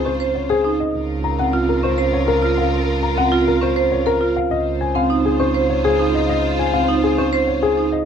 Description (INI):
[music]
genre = classical, minimalist pattern music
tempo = 101 BPM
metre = 3/4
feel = straight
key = Db major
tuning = A4 = 441 Hz
[part]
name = dark grand piano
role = melody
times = 0.0-8.1 s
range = Ab4 to Bb5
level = -21 LUFS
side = left 9 dB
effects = none
[part]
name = rich symphonic violin section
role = sustained chords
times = 0.0-7.9 s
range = F4 to C5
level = -25 LUFS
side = left 3 dB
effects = none
[part]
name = clear double bass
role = bass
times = 0.0-7.9 s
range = Db2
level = -23 LUFS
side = right 2 dB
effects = none
[part]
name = marimba with medium hard mallets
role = arpeggios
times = 0.1-8.0 s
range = C4 to C5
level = -19 LUFS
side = right 5 dB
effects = none
[sound]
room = light reverb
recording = dark, warm production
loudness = -16 LUFS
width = side -7 dB against mid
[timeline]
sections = 0.0-8.1 A section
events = none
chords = 0.0 Dbmaj7; 0.9 Gbmaj7/Db (rootless); 4.5 Dbmaj7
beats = 0.35 | 0.94 1.54 2.13 | 2.73 3.32 3.91 | 4.51 5.10 5.70 | 6.29 6.88 7.48